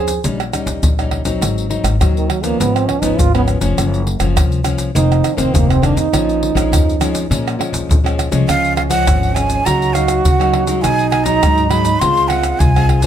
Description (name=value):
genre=samba and choro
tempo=102 BPM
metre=4/4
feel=straight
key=Bb minor, Db major from 8.5 s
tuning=A4 = 441 Hz
part: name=warm trombone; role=second line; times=0.0-12.9 s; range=Eb3 to Ab4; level=-19 LUFS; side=right 8 dB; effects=none
part: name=nylon-string guitar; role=accompaniment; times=0.0-13.1 s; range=F2 to C5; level=-21 LUFS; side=left 5 dB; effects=none
part: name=upright bass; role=bass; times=0.0-13.1 s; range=F1 to Db3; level=-18 LUFS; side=left 1 dB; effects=none
part: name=tube shaker, surdo, pandeiro and tamborim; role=percussion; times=0.1-13.1 s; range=none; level=-17 LUFS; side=equal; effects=none
part: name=breathy jazz flute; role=melody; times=8.5-13.0 s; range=F5 to C6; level=-17 LUFS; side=right 2 dB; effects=plate reverb
room=light reverb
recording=close, detailed microphones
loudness=-13 LUFS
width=side -10 dB against mid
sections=0.0-8.5 A section; 8.5-13.1 B section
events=trombone solo 0.0-8.5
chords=0.2 Eb7/Bb; 1.4 Ab7; 2.6 Db7/Ab; 3.8 Gbmaj7; 5.0 F7sus4; 6.1 Bbm7; 8.5 Db; 9.7 Gb6/Db; 10.8 Cb6; 12.0 Dbmaj7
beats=0.24 0.83 | 1.42 2.01 2.60 3.19 | 3.78 4.36 4.95 5.54 | 6.13 6.72 7.30 7.89 | 8.48 9.07 9.66 10.25 | 10.84 11.43 12.01 12.60